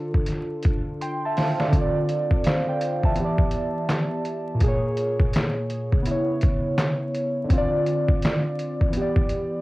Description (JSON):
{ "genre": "lo-fi hip hop", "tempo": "83 BPM", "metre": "4/4", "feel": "swing 62% on 16ths", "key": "unclear", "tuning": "A4 = 440 Hz", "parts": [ { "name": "warbly lo-fi synth keys", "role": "accompaniment", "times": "0.0-9.6 s", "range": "Bb2 to C6", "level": "-24 LUFS", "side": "equal", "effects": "chorus, phaser, cassette tape, low-pass filter" }, { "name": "trip hop sampler-style drum kit", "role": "drums", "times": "0.1-9.5 s", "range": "handclaps, hi-hat, kick drum, snare drum", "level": "-22 LUFS", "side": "equal", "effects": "overdrive, cassette tape" } ], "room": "light reverb", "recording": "home recording on cassette, vinyl crackle", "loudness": "-21 LUFS", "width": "side -19 dB against mid", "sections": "0.0-1.7 A section; 1.7-9.6 B section", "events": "drum fill 1.0-1.7", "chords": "0.0 Dm7; 3.2 Em7; 4.6 Bbm7; 6.1 C#m7; 7.5 Dm7; 9.0 Em7" }